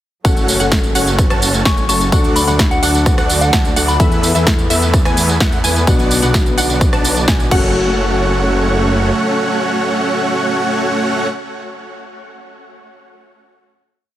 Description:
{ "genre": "EDM, festival progressive house", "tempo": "128 BPM", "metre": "4/4", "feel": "straight", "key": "F# minor", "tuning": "A4 = 440 Hz", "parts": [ { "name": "dark baby grand piano", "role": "accompaniment", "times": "0.2-14.0 s", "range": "B2 to A4", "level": "-22 LUFS", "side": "left 3 dB", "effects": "sidechain pumping, digital delay" }, { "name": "muted studio string section", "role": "sustained chords", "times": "0.2-11.3 s", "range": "C#3 to D4", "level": "-25 LUFS", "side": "right 2 dB", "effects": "none" }, { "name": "wide unison pluck", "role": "arpeggios", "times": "0.2-11.3 s", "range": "E5 to A5", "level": "-24 LUFS", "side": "equal", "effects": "sidechain pumping, digital delay" }, { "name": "big supersaw lead", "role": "riff", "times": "0.2-11.3 s", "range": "A3 to A5", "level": "-18 LUFS", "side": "right 1 dB", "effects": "sidechain pumping, digital delay" }, { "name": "detuned saw bass", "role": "bass", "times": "0.2-9.1 s", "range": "F#1 to E2", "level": "-19 LUFS", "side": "equal", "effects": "sidechain pumping" }, { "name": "big-room dance drum kit", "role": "drums", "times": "0.2-7.6 s", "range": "crash cymbal, hi-hat, rim click, snare drum, tambourine", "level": "-18 LUFS", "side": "right 1 dB", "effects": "none" }, { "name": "electronic kick drum", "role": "drums", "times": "0.2-7.6 s", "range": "none", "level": "-15 LUFS", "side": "equal", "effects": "none" }, { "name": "soft synth bell", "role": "melody", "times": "1.7-4.0 s", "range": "F#5 to C#6", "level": "-22 LUFS", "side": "left 2 dB", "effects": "chorus, phaser, digital delay" } ], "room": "digital ambience", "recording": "heavily compressed radio sound", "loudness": "-12 LUFS", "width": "side -13 dB against mid", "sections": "0.2-7.7 drop; 7.7-11.5 final hit", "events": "drop 0.2-7.7", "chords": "0.2 F#m; 2.1 D; 4.0 Esus4; 5.9 Bm; 7.5 F#m", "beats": "| 0.25 0.72 1.19 1.66 | 2.12 2.59 3.06 3.53 | 4.00 4.47 4.94 5.41 | 5.87 6.34 6.81 7.28 | 7.75 8.22 8.69 9.15 | 9.62 10.09 10.56 11.03" }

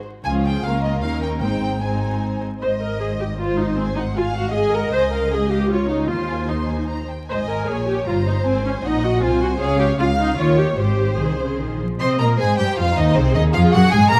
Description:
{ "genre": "quick classical-period movement for string orchestra", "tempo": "155 BPM", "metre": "3/4", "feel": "straight", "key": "Ab major", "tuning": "A4 = 440 Hz", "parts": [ { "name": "rich studio violin section", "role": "melody", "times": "0.0-14.2 s", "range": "C5 to C6", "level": "-29 LUFS", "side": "equal", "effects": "none" }, { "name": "dark studio viola section", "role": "accompaniment", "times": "0.2-14.2 s", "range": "F3 to Eb5", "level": "-25 LUFS", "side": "equal", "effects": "none" }, { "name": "rich studio violin section", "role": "second line", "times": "0.3-14.2 s", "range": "C4 to F5", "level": "-28 LUFS", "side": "equal", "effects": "none" }, { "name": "warm studio cello section", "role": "bass", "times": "0.3-14.2 s", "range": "Db2 to C4", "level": "-26 LUFS", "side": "equal", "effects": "none" }, { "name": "warm studio double bass section", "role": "bass", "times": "0.3-14.2 s", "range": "G1 to C3", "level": "-25 LUFS", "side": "equal", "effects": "none" } ], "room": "light reverb", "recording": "close, detailed microphones, vinyl crackle", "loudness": "-20 LUFS", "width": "mono", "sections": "0.0-2.6 A section; 2.6-12.0 B section; 12.0-14.2 B section", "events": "none", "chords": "0.3 Db; 0.6 Bbm/Db; 1.0 Eb7; 1.4 Ab; 3.8 Ab7; 4.9 Db; 5.7 Dbadd9; 6.1 Ab/Eb; 6.9 Eb; 7.3 Ab; 8.5 Ab7; 9.6 Db; 10.4 Eb7; 10.8 Ab; 13.2 Ab7/C", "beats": "| 0.26 0.65 1.03 | 1.43 1.83 2.23 | 2.62 3.01 3.40 | 3.79 4.17 4.55 | 4.93 5.31 5.70 | 6.10 6.50 6.90 | 7.30 7.69 8.08 | 8.46 8.84 9.22 | 9.61 9.99 10.38 | 10.78 11.19 11.59 | 12.00 12.39 12.78 | 13.16 13.55 13.93" }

